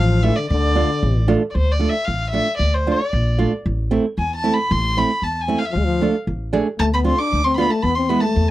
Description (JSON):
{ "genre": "klezmer", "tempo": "114 BPM", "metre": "2/4", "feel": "straight", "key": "D dorian sharp4", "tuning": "A4 = 440 Hz", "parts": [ { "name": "dark violin", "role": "melody", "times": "0.0-8.5 s", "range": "C5 to D6", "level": "-22 LUFS", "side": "equal", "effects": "none" }, { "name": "breathy trombone", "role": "second line", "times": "0.0-1.2, 5.7-8.5 s", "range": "D3 to D4", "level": "-22 LUFS", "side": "left 4 dB", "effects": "none" }, { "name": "upright bass", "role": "bass", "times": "0.0-8.5 s", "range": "A1 to E2", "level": "-20 LUFS", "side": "equal", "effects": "none" }, { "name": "nylon-string guitar", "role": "accompaniment", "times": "0.2-8.2 s", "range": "G#3 to G#4", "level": "-20 LUFS", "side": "right 4 dB", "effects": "none" } ], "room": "little or no reverb", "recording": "dry, close 1970s-style studio recording", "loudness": "-17 LUFS", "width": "side -15 dB against mid", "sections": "0.0-1.5 A section; 1.5-8.5 B section", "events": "violin solo 1.5-8.5", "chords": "0.0 Dm; 3.7 Am; 5.8 Dm; 7.8 E" }